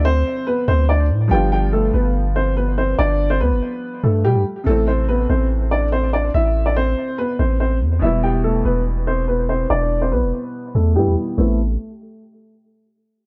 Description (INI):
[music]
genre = hip hop, drill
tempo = 143 BPM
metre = 4/4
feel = half-time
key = A minor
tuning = A4 = 440 Hz
[part]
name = dark upright piano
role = melody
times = 0.0-11.6 s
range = G3 to G5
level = -23 LUFS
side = equal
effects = tape echo
[part]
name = felt-muted upright piano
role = accompaniment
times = 0.0-11.6 s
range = B2 to A4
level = -30 LUFS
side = equal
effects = none
[part]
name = long sustained 808-style bass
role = bass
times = 0.0-11.8 s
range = E1 to B2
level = -20 LUFS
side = equal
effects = none
[sound]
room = light reverb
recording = low-pass filter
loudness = -19 LUFS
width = mono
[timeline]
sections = 0.0-4.7 A section; 4.7-11.4 B section; 11.4-13.1 C section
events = filter sweep 4.7-11.4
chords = 0.0 Dm; 1.3 G7; 4.7 Am; 8.0 Em; 11.4 Amadd9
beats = 0.05 0.47 0.89 | 1.31 1.73 2.15 2.57 | 2.99 3.41 3.83 4.25 | 4.67 5.08 5.50 5.92 | 6.34 6.76 7.18 7.60 | 8.02 8.44 8.86 9.28 | 9.70 10.12 10.54 10.96 | 11.38